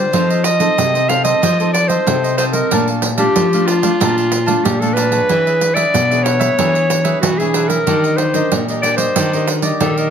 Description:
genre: samba and choro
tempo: 93 BPM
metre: 4/4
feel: straight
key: unclear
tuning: A4 = 439 Hz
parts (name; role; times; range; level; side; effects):
- clear clarinet; melody; 0.0-10.1 s; F4 to F5; -16 LUFS; left 1 dB; none
- cavaquinho; accompaniment; 0.0-10.1 s; D4 to A5; -23 LUFS; right 3 dB; none
- nylon-string guitar; accompaniment; 0.0-10.1 s; Bb2 to C#5; -22 LUFS; left 1 dB; none
- nylon-string guitar; bass; 0.0-10.1 s; Bb2 to F3; -19 LUFS; equal; none
- pandeiro; percussion; 0.1-10.1 s; none; -20 LUFS; right 6 dB; none
room: light reverb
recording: close, detailed microphones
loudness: -13 LUFS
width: side -8 dB against mid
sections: 0.0-10.1 A section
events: none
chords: 0.1 F7; 2.7 Bbmaj7; 5.3 E6; 7.9 Ebmaj7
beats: | 0.14 0.78 1.43 2.07 | 2.72 3.36 4.01 4.65 | 5.30 5.94 6.59 7.23 | 7.88 8.52 9.17 9.81

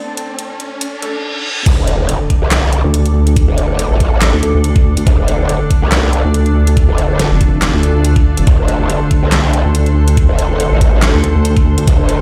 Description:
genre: heavy wobble dubstep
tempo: 141 BPM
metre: 4/4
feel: swing 55% on 16ths, half-time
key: D minor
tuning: A4 = 440 Hz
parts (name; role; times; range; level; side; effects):
- felt-muted upright piano; melody; 0.0-1.2 s; A3 to D5; -32 LUFS; equal; delay
- lush unison pad; sustained chords; 0.0-12.2 s; A2 to D5; -23 LUFS; equal; chorus, sidechain pumping
- riser, reverse cymbal and impact; sound effects; 0.0-3.4 s; none; -25 LUFS; equal; none
- granular cloud pad; texture; 0.0-12.2 s; D4 to A5; -28 LUFS; equal; built-in reverb, sidechain pumping
- dubstep drum kit; drums; 0.2-12.2 s; crash cymbal, handclaps, hi-hat, snare drum; -21 LUFS; equal; none
- growl bass; bass; 1.7-12.2 s; F1 to D2; -16 LUFS; equal; chorus, overdrive
- electronic kick drum; drums; 1.7-12.0 s; none; -13 LUFS; equal; none
- vowel-sweep wobble bass; bass; 2.8-11.9 s; F1 to D2; -14 LUFS; equal; chorus, overdrive
room: little or no reverb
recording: played on a big sound system in a bare room, large studio reverb, high-pass filter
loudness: -13 LUFS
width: mono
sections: 0.0-1.7 A section; 1.7-12.2 B section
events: build-up 0.0-1.7; riser 0.0-1.2; filter sweep on analog synth pad 0.0-1.7; filter sweep 0.0-1.7; reverse cymbal 0.8-1.7; drop 1.7-12.2; impact 1.7-3.4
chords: 0.0 D5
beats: 0.39 0.81 1.24 | 1.66 2.09 2.51 2.94 | 3.37 3.79 4.22 4.64 | 5.07 5.49 5.92 6.34 | 6.77 7.19 7.62 8.04 | 8.47 8.90 9.32 9.75 | 10.17 10.60 11.02 11.45 | 11.88

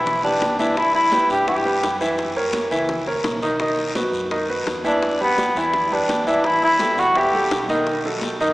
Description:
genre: latin, salsa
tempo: 169 BPM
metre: 4/4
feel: straight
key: E minor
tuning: A4 = 440 Hz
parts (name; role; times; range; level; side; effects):
- dark cor anglais; melody; 0.0-2.0, 4.9-7.7 s; B3 to G4; -19 LUFS; equal; none
- clear grand piano; accompaniment; 0.0-8.5 s; D#3 to E5; -22 LUFS; equal; none
- vintage muted fingered electric bass; bass; 0.0-8.5 s; A1 to G2; -38 LUFS; equal; none
- bongos; percussion; 0.1-8.4 s; none; -31 LUFS; left 2 dB; none
- congas; percussion; 0.1-8.5 s; none; -33 LUFS; equal; none
- guiro; percussion; 0.1-8.5 s; none; -33 LUFS; left 2 dB; none
room: wet cathedral reverb, RT60 4.1 s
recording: recorded in a church or concert hall, small speaker sound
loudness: -17 LUFS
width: side -19 dB against mid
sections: 0.0-8.5 A section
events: none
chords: 0.0 Em7; 0.8 Cmaj7; 2.2 F#7; 3.6 B; 5.0 Em7; 6.4 A5; 7.9 B7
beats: 0.06 0.41 | 0.77 1.12 1.48 1.83 | 2.19 2.54 2.90 3.25 | 3.60 3.96 4.32 4.67 | 5.03 5.38 5.74 6.09 | 6.45 6.80 7.16 7.51 | 7.87 8.22

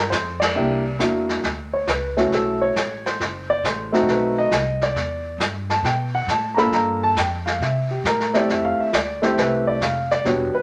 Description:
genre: jazz piano trio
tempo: 136 BPM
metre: 4/4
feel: swing 67% on 8ths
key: unclear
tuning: A4 = 438 Hz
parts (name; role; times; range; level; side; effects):
- upright bass; bass; 0.0-10.6 s; E1 to C3; -31 LUFS; equal; none
- warm upright piano; melody; 0.1-10.6 s; G3 to B5; -23 LUFS; equal; none
- vintage brush drum kit; drums; 0.1-10.6 s; brushed snare drum, hi-hat, ride cymbal, snare drum; -28 LUFS; equal; none
room: moderate studio reverb, RT60 0.6 s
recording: none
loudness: -21 LUFS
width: mono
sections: 0.0-1.4 A section; 1.4-10.6 B section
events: band accent 0.3; upright piano solo 1.4-10.6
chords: 0.0 Bb69/F (rootless); 0.6 C9; 1.4 Dmaj9; 3.2 F#dim; 4.1 B7b9; 5.0 Em7; 6.7 Gm7; 7.6 C6; 8.5 Fmaj7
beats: 0.11 0.55 0.99 | 1.43 1.88 2.32 2.76 | 3.20 3.64 4.08 4.52 | 4.96 5.40 5.84 6.28 | 6.72 7.16 7.60 8.04 | 8.48 8.93 9.37 9.81 | 10.25

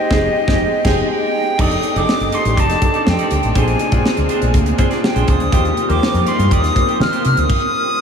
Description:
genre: polished 1980s jazz-funk pop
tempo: 122 BPM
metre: 4/4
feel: straight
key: Eb major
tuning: A4 = 440 Hz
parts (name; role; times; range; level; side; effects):
- breathy silver concert flute; melody; 0.0-8.0 s; Eb5 to F6; -20 LUFS; equal; analog delay
- clear grand piano; accompaniment; 0.0-7.5 s; Bb3 to C5; -20 LUFS; left 2 dB; wide subtle chorus
- clean electric guitar; riff; 0.1-7.4 s; Ab3 to Eb5; -26 LUFS; right 5 dB; wide subtle chorus
- deep dub fingered electric bass; bass; 0.1-7.5 s; F1 to Eb3; -18 LUFS; equal; none
- tight funk drum kit; drums; 0.1-7.6 s; crash cymbal, hi-hat, kick drum, snare drum; -19 LUFS; equal; none
- rich studio string section; sustained chords; 1.6-7.5 s; C3 to G4; -26 LUFS; right 1 dB; none
room: wet huge ambient reverb, RT60 7.7 s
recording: dreamy mix soaked in reverb, small room ambience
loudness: -13 LUFS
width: side -7 dB against mid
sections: 0.0-1.6 A section; 1.6-8.0 B section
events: band accent 0.0-1.6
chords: 0.0 Fm9; 1.6 F13; 3.6 Bb9; 5.5 Eb69; 7.5 N.C.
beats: 0.11 0.60 1.09 | 1.59 2.08 2.57 3.07 | 3.56 4.05 4.54 5.04 | 5.53 6.02 6.51 7.01 | 7.50 7.99

